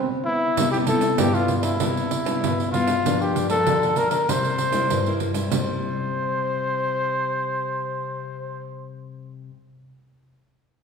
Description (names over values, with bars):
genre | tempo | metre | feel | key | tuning
samba and choro | 97 BPM | 4/4 | straight | C major | A4 = 442 Hz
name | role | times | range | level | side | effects
growling trombone | second line | 0.0-0.5 s | B3 | -30 LUFS | right 3 dB | none
breathy trumpet | melody | 0.2-8.8 s | E4 to C5 | -24 LUFS | left 1 dB | none
nylon-string guitar | accompaniment | 0.6-9.5 s | G2 to E4 | -26 LUFS | left 2 dB | none
pandeiro | percussion | 0.6-5.7 s | none | -27 LUFS | right 5 dB | none
room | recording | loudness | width
wet recital hall reverb, RT60 1.7 s | recorded in a church or concert hall | -20 LUFS | side -6 dB against mid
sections
0.6-5.5 A section; 5.5-8.0 B section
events
band accent 0.0-0.6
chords
0.0 N.C.; 0.6 Cmaj7; 3.0 Gm7; 4.3 C7; 5.5 C